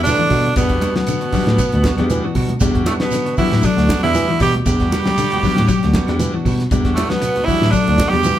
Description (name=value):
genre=afrobeat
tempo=117 BPM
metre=4/4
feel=swing 54% on 16ths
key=E minor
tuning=A4 = 441 Hz
part: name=raspy tenor saxophone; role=melody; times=0.0-8.4 s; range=A3 to G4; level=-19 LUFS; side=right 3 dB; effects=none
part: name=clear trombone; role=second line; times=0.0-8.4 s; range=A3 to G4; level=-30 LUFS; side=right 3 dB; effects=none
part: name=raspy baritone saxophone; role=second line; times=0.0-8.4 s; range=A2 to G3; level=-28 LUFS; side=left 3 dB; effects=none
part: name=overdriven combo organ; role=accompaniment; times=0.0-8.4 s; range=G3 to F#5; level=-28 LUFS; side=left 2 dB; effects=none
part: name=electric guitar at the edge of break-up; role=arpeggios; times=0.0-8.4 s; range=D3 to G3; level=-23 LUFS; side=left 6 dB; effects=spring reverb
part: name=bright tine electric piano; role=bass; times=0.0-8.4 s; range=D2 to E3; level=-19 LUFS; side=equal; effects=none
part: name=cloth-damped thuddy drum kit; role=drums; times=0.1-8.4 s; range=hi-hat, kick drum, snare drum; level=-22 LUFS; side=equal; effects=none
part: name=congas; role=percussion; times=0.1-8.4 s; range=none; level=-25 LUFS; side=equal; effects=none
part: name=shekere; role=percussion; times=0.1-8.4 s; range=none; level=-27 LUFS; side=right 4 dB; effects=none
part: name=clean electric guitar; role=stabs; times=0.2-8.2 s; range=G3 to F#4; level=-27 LUFS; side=right 3 dB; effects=none
part: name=claves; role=percussion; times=0.3-8.2 s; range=none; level=-39 LUFS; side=equal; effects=none
room=wet large studio reverb, RT60 0.9 s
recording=band playing live in one room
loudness=-14 LUFS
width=side -12 dB against mid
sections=0.0-8.4 A section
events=none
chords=0.0 Em9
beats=0.05 | 0.56 1.08 1.59 2.10 | 2.61 3.12 3.64 4.15 | 4.66 5.17 5.68 6.20 | 6.71 7.22 7.73 8.24